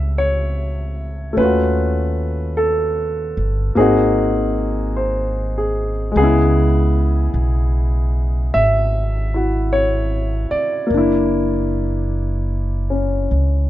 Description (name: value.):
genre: jazz ballad.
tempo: 50 BPM.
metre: 4/4.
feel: swing 67% on 8ths.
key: unclear.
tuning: A4 = 441 Hz.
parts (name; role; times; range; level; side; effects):
warm grand piano; accompaniment; 0.0-13.7 s; C#3 to E5; -18 LUFS; left 1 dB; none.
upright bass; bass; 0.0-13.7 s; F#1 to D#2; -19 LUFS; equal; none.
room: little or no reverb.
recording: dark, warm production, nothing above 7.6 kHz.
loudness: -16 LUFS.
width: side -14 dB against mid.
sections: 0.0-13.7 A section.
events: none.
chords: 0.0 F#m9 (rootless); 1.4 D#m7b5; 3.8 G#7; 6.1 C#m7; 10.9 F#7b13.